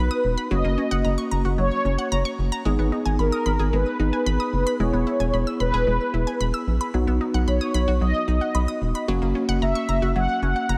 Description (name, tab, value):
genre	synth-pop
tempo	112 BPM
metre	4/4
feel	straight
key	unclear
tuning	A4 = 440 Hz
part	mellow synth brass	melody	0.0-10.8 s	A#4 to F#5	-28 LUFS	equal	chorus, shimmer reverb
part	tine electric piano	accompaniment	0.0-10.8 s	A#3 to G#4	-29 LUFS	equal	none
part	resonant blip pluck	arpeggios	0.0-10.8 s	F#3 to E6	-33 LUFS	equal	phaser, shimmer reverb, digital delay
part	rubbery square bass	bass	0.0-10.8 s	E1 to B1	-25 LUFS	equal	none
room	light reverb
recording	none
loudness	-23 LUFS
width	mono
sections	0.0-10.8 A section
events	none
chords	0.0 B; 0.5 F#; 2.7 G#m; 4.8 E; 6.9 B; 9.1 F#